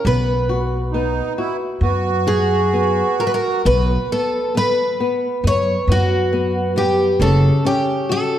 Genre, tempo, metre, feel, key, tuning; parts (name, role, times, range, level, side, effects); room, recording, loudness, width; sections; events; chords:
fado-style ballad; 68 BPM; 4/4; rubato; B major; A4 = 440 Hz
picked twelve-string acoustic guitar; melody; 0.0-8.4 s; F#4 to C#5; -20 LUFS; equal
flamenco guitar; accompaniment; 0.0-8.4 s; C#3 to F#4; -22 LUFS; left 2 dB
upright bass; bass; 0.0-7.5 s; F#1 to F#2; -19 LUFS; equal
accordion; second line; 0.9-3.6 s; D#4 to F#4; -22 LUFS; right 5 dB; light tremolo tuning
moderate scoring stage reverb, RT60 1.8 s; dark, warm production; -16 LUFS; side -11 dB against mid
0.0-3.7 A section; 3.7-8.4 B section
0.1 B5; 7.2 F#5